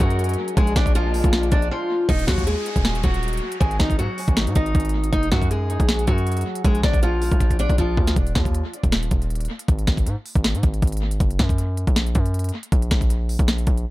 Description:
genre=hip hop, trap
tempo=158 BPM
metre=4/4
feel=half-time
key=unclear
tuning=A4 = 440 Hz
part: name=picked steel-string acoustic guitar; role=melody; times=0.0-8.1 s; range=F3 to Eb5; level=-25 LUFS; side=left 1 dB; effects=low-pass filter, dub echo
part: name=warm studio string section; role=sustained chords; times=0.0-2.1 s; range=Gb3 to Bb4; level=-32 LUFS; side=left 2 dB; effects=none
part: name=distorted 808-style bass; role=bass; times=0.0-13.9 s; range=Eb1 to Ab2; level=-22 LUFS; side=equal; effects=distortion
part: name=trap drum kit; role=drums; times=0.0-13.9 s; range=hi-hat, kick drum, snare drum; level=-21 LUFS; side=equal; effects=overdrive
part: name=downlifter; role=sound effects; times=2.1-5.1 s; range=none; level=-35 LUFS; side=equal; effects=none
room=digital ambience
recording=echo-heavy mix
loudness=-18 LUFS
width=side -18 dB against mid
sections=0.0-2.1 A section; 2.1-13.9 B section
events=break 1.7-2.1; drum fill 7.4-8.2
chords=0.0 Gb6; 0.6 Bb7; 2.1 Ebm; 3.6 Ab5; 5.1 Gb; 6.6 Bb; 8.2 N.C.; 11.2 Gb; 12.7 N.C.

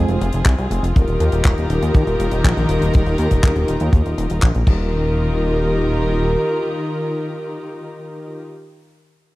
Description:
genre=italo disco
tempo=121 BPM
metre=4/4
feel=straight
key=Eb major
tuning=A4 = 440 Hz
part: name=dark studio string section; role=sustained chords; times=0.0-8.4 s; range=Eb3 to Bb4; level=-21 LUFS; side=left 1 dB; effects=none
part: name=chorused synth bass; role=bass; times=0.0-6.4 s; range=Eb1 to Eb2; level=-19 LUFS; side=equal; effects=none
part: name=damped 70s drum kit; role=drums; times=0.1-4.8 s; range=crash cymbal, handclaps, hi-hat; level=-27 LUFS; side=left 1 dB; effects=small room ambience
part: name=kick drum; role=drums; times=0.5-4.8 s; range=none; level=-14 LUFS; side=equal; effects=small room ambience
room=little or no reverb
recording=dry, close 1970s-style studio recording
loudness=-15 LUFS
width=side -18 dB against mid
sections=0.0-4.9 A section; 4.9-8.9 B section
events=none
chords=0.0 Fm; 1.0 Ebadd9

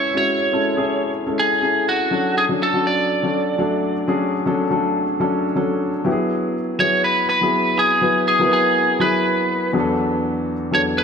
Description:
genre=pop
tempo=122 BPM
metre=4/4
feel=swing 55% on 16ths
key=E mixolydian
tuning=A4 = 440 Hz
part: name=lightly driven lead guitar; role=melody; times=0.0-11.0 s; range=F#4 to D5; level=-18 LUFS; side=right 1 dB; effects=ping-pong delay
part: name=dark grand piano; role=accompaniment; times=0.0-11.0 s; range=E2 to B4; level=-20 LUFS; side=left 1 dB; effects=none
room=moderate lush hall reverb, RT60 2.5 s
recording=none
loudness=-17 LUFS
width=side -6 dB against mid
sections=0.0-6.1 A section; 6.1-11.0 B section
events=none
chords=0.0 Amaj7; 2.1 Dmaj7; 6.1 Eadd9; 9.7 Bm7/E

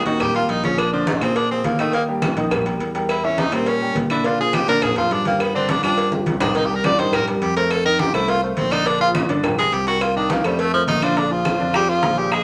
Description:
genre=Afro-Cuban jazz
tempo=208 BPM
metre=4/4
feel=straight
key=Bb mixolydian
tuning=A4 = 440 Hz
part: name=edgy tenor saxophone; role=melody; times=0.0-12.4 s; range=F3 to D5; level=-23 LUFS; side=equal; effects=none
part: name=warm baby grand piano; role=accompaniment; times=0.1-12.4 s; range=D3 to E5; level=-27 LUFS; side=equal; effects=none
part: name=fingered electric bass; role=bass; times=0.1-12.4 s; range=G1 to Bb2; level=-28 LUFS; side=equal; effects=none
part: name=congas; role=percussion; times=0.1-12.4 s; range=none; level=-28 LUFS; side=equal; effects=none
part: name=cowbell and bongos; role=percussion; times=0.1-12.4 s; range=none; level=-28 LUFS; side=equal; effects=none
part: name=claves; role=percussion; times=0.2-12.4 s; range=none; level=-34 LUFS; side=equal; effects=none
part: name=bright tenor saxophone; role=second line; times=10.9-12.4 s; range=D3 to Ab3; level=-31 LUFS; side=equal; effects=none
room=wet studio reverb, RT60 0.7 s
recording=none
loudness=-19 LUFS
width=mono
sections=0.0-11.2 A section; 11.2-12.4 B section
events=tenor saxophone solo 0.0-11.2; drum fill 6.1-6.6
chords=0.0 Ebadd9; 0.8 Bb7; 1.9 Eb; 3.1 Edim7; 4.2 Bb7; 5.4 G5; 6.6 Cm7; 7.7 F7; 8.9 Bb7; 9.4 Abmaj13/G; 10.0 Cm7; 10.6 F; 11.2 Bb7

